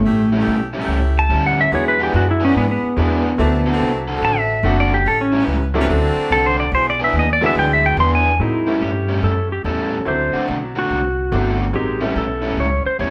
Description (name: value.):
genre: electric blues shuffle.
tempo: 144 BPM.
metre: 4/4.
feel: swing 66% on 8ths.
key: unclear.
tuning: A4 = 439 Hz.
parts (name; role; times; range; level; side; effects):
clean lap steel guitar; melody; 0.0-13.1 s; A3 to C6; -20 LUFS; equal; none.
upright bass; bass; 0.0-13.1 s; F#1 to A2; -23 LUFS; equal; none.
warm saxophone section; stabs; 0.1-8.0 s; A3 to B4; -28 LUFS; equal; none.
overdriven semi-hollow guitar; riff; 0.3-13.1 s; A2 to A4; -26 LUFS; equal; none.
bright upright piano; accompaniment; 1.7-12.9 s; F#3 to F#4; -26 LUFS; equal; none.
room: light reverb.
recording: band playing live in one room.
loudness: -18 LUFS.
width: mono.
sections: 0.0-8.4 A section; 8.4-13.1 B section.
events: electric slide guitar solo 0.0-8.4.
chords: 0.0 A7; 1.7 E7; 3.4 D7; 5.1 A7; 5.9 D7; 6.7 E7; 8.4 A7; 10.1 D7; 11.7 A7.